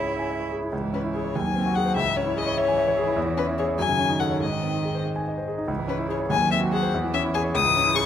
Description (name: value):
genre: quick classical-period movement for piano trio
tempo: 97 BPM (dotted quarters)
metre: 6/8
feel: uneven beats, rubato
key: C# minor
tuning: A4 = 441 Hz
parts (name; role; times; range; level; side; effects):
- warm violin; melody; 0.0-8.1 s; B4 to D#6; -24 LUFS; left 7 dB; none
- warm cello; second line; 0.0-8.1 s; D#3 to E4; -30 LUFS; right 4 dB; none
- clear concert grand piano; accompaniment; 0.0-8.1 s; C#2 to G#5; -25 LUFS; equal; none
room: moderate recital hall reverb, RT60 1.9 s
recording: close, detailed microphones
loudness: -22 LUFS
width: side -9 dB against mid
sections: 0.7-8.1 A section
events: none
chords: 0.0 C#m; 1.3 G#7/D#; 2.0 C#m; 3.2 C#m/E; 3.8 D#m7b5/F#; 4.4 G#; 5.7 C#m; 6.3 G#7/D#; 6.9 C#m/E; 7.5 C#m